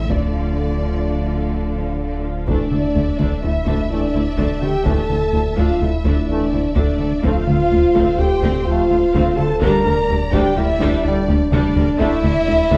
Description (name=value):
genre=cinematic, hybrid orchestral and electronic film score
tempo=126 BPM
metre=5/4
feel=straight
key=D minor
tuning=A4 = 437 Hz
part: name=warm symphonic violin section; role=melody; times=0.0-12.8 s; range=C5 to E5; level=-34 LUFS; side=equal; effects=none
part: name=dark symphonic violin section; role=second line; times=0.0-12.8 s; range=F4 to Bb5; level=-30 LUFS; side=equal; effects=none
part: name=clear symphonic viola section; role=accompaniment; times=0.0-12.8 s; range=F3 to Bb4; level=-30 LUFS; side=equal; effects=none
part: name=rich symphonic cello section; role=bass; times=0.0-12.8 s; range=D2 to D3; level=-28 LUFS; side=equal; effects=none
part: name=rich symphonic double bass section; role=bass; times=0.0-12.8 s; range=D2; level=-28 LUFS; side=equal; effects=none
part: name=sub bass with octave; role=bass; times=0.0-12.8 s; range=D1 to A1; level=-29 LUFS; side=equal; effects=none
part: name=bright trombone section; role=sustained chords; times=0.1-12.2 s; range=D3 to A3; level=-29 LUFS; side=equal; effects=none
part: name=taiko ensemble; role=drums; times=0.1-12.8 s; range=none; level=-27 LUFS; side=equal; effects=none
part: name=warm French horn section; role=sustained chords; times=2.5-12.8 s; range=D4 to Bb4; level=-22 LUFS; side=equal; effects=none
part: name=rubbery square bass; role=riff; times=2.5-12.8 s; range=D2 to D3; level=-26 LUFS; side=equal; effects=none
room=wet recital hall reverb, RT60 1.4 s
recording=dark, warm production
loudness=-18 LUFS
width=mono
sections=0.0-2.5 A section; 2.5-12.8 B section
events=drum fill 11.3-12.0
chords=0.1 Dm; 2.5 Dsus2; 7.2 F/D; 9.6 Gm/D; 12.0 Dsus2